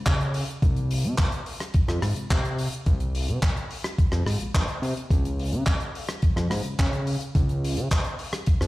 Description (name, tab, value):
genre	nu-disco, nu disco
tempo	107 BPM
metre	4/4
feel	straight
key	Db major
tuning	A4 = 439 Hz
part	fat analog bass	bass	0.0-8.7 s	Bb1 to Db3	-25 LUFS	equal	none
part	damped 70s drum kit	drums	0.1-8.7 s	handclaps, hi-hat, rim click	-31 LUFS	left 1 dB	none
part	electronic kick drum	drums	0.1-8.6 s	none	-22 LUFS	equal	none
room	little or no reverb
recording	played on a big sound system in a bare room, stone room reverb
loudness	-23 LUFS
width	side -18 dB against mid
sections	0.0-8.7 A section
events	none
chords	none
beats	0.06 | 0.62 1.18 1.74 2.30 | 2.86 3.42 3.98 4.55 | 5.11 5.67 6.23 6.79 | 7.35 7.91 8.47